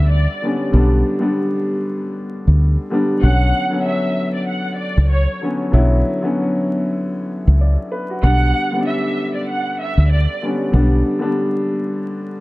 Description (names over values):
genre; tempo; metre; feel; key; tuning
hip hop, boom-bap hip-hop; 96 BPM; 4/4; swing 57% on 16ths; unclear; A4 = 440 Hz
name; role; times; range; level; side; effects
dark studio violin section; melody; 0.0-10.4 s; C#5 to F#5; -23 LUFS; right 1 dB; high-pass filter, low-pass filter, dub echo
dark upright piano; accompaniment; 0.0-12.4 s; D3 to D5; -20 LUFS; left 1 dB; cassette tape, high-pass filter, low-pass filter
deep dub fingered electric bass; bass; 0.0-11.0 s; B1 to D2; -13 LUFS; equal; none
room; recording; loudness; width
small room ambience; echo-heavy mix, vinyl crackle; -16 LUFS; side -19 dB against mid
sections
0.0-12.4 A section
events
none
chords
0.0 G/B; 3.2 Bmadd9; 8.2 G/B